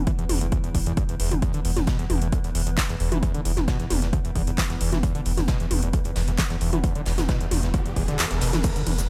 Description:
driving peak-time techno; 133 BPM; 4/4; straight; A4 = 440 Hz
saturated sub bass; bass; 0.0-9.1 s; E1; -29 LUFS; equal; overdrive, sidechain pumping, low-pass filter
metallic inharmonic drone; drone; 0.0-9.1 s; E3 to B3; -38 LUFS; equal; chorus, built-in reverb, phaser, sidechain pumping
screaming distorted acid line; riff; 0.1-9.0 s; D2 to E3; -31 LUFS; equal; distortion, analog chorus, cassette tape, sidechain pumping, analog delay
electronic kick drum; drums; 0.1-8.7 s; -28 LUFS; equal; overdrive
techno drum kit; drums; 0.1-9.1 s; crash cymbal, handclaps, hi-hat, ride cymbal, shaker, toms; -31 LUFS; equal; sidechain pumping on hats, sidechain pumping on cymbals, sidechain pumping on toms, sidechain pumping on perc
gated 80s drum kit; drums; 1.4-9.1 s; hi-hat, snare drum; -41 LUFS; equal; high-pass filter on hats, high-pass filter on snare, high-pass filter on room
riser and impact; sound effects; 6.6-9.1 s; -38 LUFS; equal
little or no reverb; -24 LUFS; mono
0.0-8.6 A section
riser 6.6-8.6; kick drops out 8.2-8.6; impact 8.6-9.1
0.0 E5

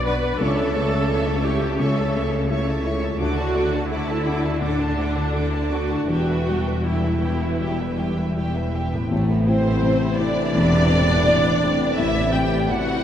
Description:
cinematic, emotional film score for orchestra; 78-87 BPM; 4/4; rubato; A4 = 442 Hz
warm symphonic violin section; melody; 0.0-13.0 s; C5 to D6; -28 LUFS; equal
warm symphonic violin section; second line; 0.0-13.0 s; A3 to A5; -31 LUFS; right 1 dB
clear symphonic viola section; accompaniment; 0.0-13.0 s; C4 to B4; -27 LUFS; equal
felt-muted upright piano; accompaniment; 0.0-13.0 s; A1 to A4; -25 LUFS; left 3 dB
concert harp; arpeggios; 0.0-13.0 s; A2 to B4; -28 LUFS; equal
rich studio double bass section; bass; 0.0-12.6 s; E1 to D2; -26 LUFS; right 1 dB
rich symphonic cello section; bass; 0.0-12.6 s; E2 to D3; -28 LUFS; equal
mellow French horn section; sustained chords; 9.1-13.0 s; C3 to E3; -28 LUFS; right 1 dB
concert flute; second line; 9.5-13.0 s; C5 to G5; -27 LUFS; right 3 dB
wet huge ambient reverb, RT60 8.4 s; in a vast, echoing space; -19 LUFS; side -10 dB against mid
0.0-9.1 A section; 9.1-13.0 B section
0.4 A/C#; 3.2 D; 6.1 Em; 9.1 Amadd9

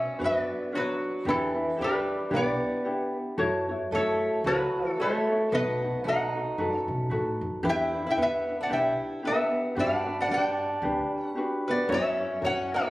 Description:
Hawaiian; 113 BPM; 4/4; swing 56% on 8ths; B minor; A4 = 440 Hz
metal-body resonator slide guitar; melody; 0.0-12.9 s; E4 to G5; -28 LUFS; left 1 dB
fingerpicked swing-style acoustic guitar; second line; 0.0-12.9 s; E3 to E4; -30 LUFS; right 1 dB
ukulele; accompaniment; 0.0-12.9 s; D4 to C#5; -30 LUFS; left 1 dB
upright bass; bass; 0.2-12.8 s; B1 to B2; -36 LUFS; equal
wet recital hall reverb, RT60 1.7 s; recorded on a phone in the room, club ambience, compression; -25 LUFS; side -18 dB against mid
0.0-12.9 A section
0.0 Bmadd9; 1.3 Em7; 3.4 F#m7; 5.5 B7; 7.6 Em7; 9.8 Gmaj7; 11.9 F#7

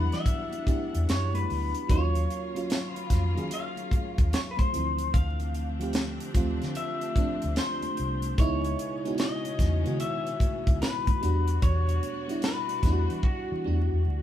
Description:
R&B, neo-soul; 74 BPM; 4/4; swing 63% on 16ths; A4 = 441 Hz
electric guitar through a small old amp; melody; 0.0-14.2 s; F#4 to F5; -34 LUFS; left 3 dB; vibrato effect
FM electric piano; accompaniment; 0.0-14.2 s; Eb3 to Ab4; -33 LUFS; right 2 dB; chorus
clear studio string section; sustained chords; 0.0-14.2 s; Cb3 to F#5; -40 LUFS; left 2 dB
vintage muted fingered electric bass; bass; 0.0-14.2 s; C2 to E3; -28 LUFS; equal
tight funk drum kit; drums; 0.1-13.5 s; hi-hat, kick drum, snare drum; -26 LUFS; equal
congas; percussion; 0.3-14.2 s; -43 LUFS; left 1 dB
light reverb; band playing live in one room, vinyl crackle; -25 LUFS; side -11 dB against mid
0.0-14.2 A section
drum fill 13.2-14.2
0.0 Em9; 1.9 Ebm9; 4.7 Dm9; 8.4 Dbm9; 11.2 Em9

